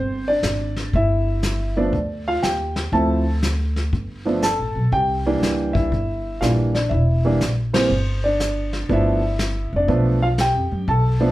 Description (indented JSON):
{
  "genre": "jazz piano trio",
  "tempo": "121 BPM",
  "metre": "4/4",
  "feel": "swing 66% on 8ths",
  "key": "G mixolydian",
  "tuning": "A4 = 441 Hz",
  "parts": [
    { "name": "dark grand piano", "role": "melody", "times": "0.0-11.3 s", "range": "E3 to A5", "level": "-21 LUFS", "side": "right 1 dB", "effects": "none" },
    { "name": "upright bass", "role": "bass", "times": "0.0-11.3 s", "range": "E1 to F#2", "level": "-22 LUFS", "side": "equal", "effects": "none" },
    { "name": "vintage brush drum kit", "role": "drums", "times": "0.4-11.3 s", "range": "brushed snare drum, hi-hat, kick drum, ride cymbal, snare drum", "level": "-26 LUFS", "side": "left 1 dB", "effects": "none" }
  ],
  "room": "wet studio reverb, RT60 0.5 s",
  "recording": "heard from further back in the room",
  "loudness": "-18 LUFS",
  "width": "side -16 dB against mid",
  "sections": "0.0-11.3 A section",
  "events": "band accent 7.7",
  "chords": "0.0 Csus2; 0.9 G7(no3); 2.9 Dm7; 3.9 Gadd9; 4.9 C9; 8.9 G9"
}